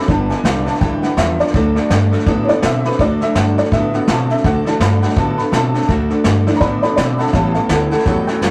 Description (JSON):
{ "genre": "rockabilly", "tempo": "166 BPM", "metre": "4/4", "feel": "swing 60% on 8ths", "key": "D mixolydian", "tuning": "A4 = 444 Hz", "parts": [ { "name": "picked steel-string acoustic guitar", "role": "accompaniment", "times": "0.0-8.5 s", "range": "A2 to B4", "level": "-25 LUFS", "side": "equal", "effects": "none" }, { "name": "tack piano", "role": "accompaniment", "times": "0.0-8.5 s", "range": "F#3 to B5", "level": "-21 LUFS", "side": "equal", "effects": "none" }, { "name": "electric guitar through a small old amp", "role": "riff", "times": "0.0-8.5 s", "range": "G2 to C4", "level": "-23 LUFS", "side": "equal", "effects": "none" }, { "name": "vintage brush drum kit", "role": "drums", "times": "0.0-8.5 s", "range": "hi-hat, kick drum, snare drum", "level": "-22 LUFS", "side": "equal", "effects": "none" }, { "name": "upright bass", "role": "bass", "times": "0.1-8.5 s", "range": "G1 to B2", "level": "-22 LUFS", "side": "equal", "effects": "none" } ], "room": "moderate booth ambience, RT60 0.2 s", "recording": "rough rehearsal-room recording, tube saturation", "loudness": "-15 LUFS", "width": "mono", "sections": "0.0-8.5 A section", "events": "honky-tonk piano solo 0.0-8.5", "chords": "0.1 G; 1.5 D; 7.3 A7", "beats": "| 0.09 0.45 0.81 1.18 | 1.54 1.90 2.27 2.63 | 2.99 3.35 3.72 4.08 | 4.44 4.80 5.17 5.53 | 5.89 6.25 6.61 6.98 | 7.34 7.70 8.06 8.42" }